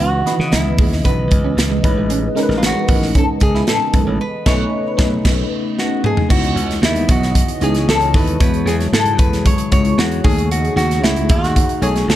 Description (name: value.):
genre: polished 1980s jazz-funk pop.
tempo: 114 BPM.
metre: 4/4.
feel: straight.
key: C# minor.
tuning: A4 = 440 Hz.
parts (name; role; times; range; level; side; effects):
lap resonator guitar; melody; 0.0-12.2 s; E4 to C#5; -21 LUFS; equal; none.
FM electric piano; accompaniment; 0.0-12.2 s; D#3 to D#5; -21 LUFS; left 1 dB; phaser, ensemble chorus.
hollow soft pad; sustained chords; 0.0-12.2 s; C#3 to D#5; -28 LUFS; equal; chorus.
electric guitar at the edge of break-up; riff; 0.0-4.1 s; G#3 to E4; -26 LUFS; right 9 dB; lush chorus.
slap bass; bass; 0.0-12.2 s; A1 to C#3; -19 LUFS; equal; none.
modern studio drum kit; drums; 0.0-12.2 s; crash cymbal, hi-hat, kick drum, snare drum, toms; -17 LUFS; equal; none.
congas; percussion; 0.4-12.0 s; none; -31 LUFS; left 2 dB; none.
room: little or no reverb.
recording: dark, warm production.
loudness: -13 LUFS.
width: side -13 dB against mid.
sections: 0.0-6.3 A section; 6.3-12.2 B section.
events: band accent 4.2-6.3; drum fill 5.8-6.3.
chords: 0.0 C#m9; 1.8 Amaj9#11; 4.2 B9; 6.3 C#m9; 8.4 E69; 10.2 B13 (rootless).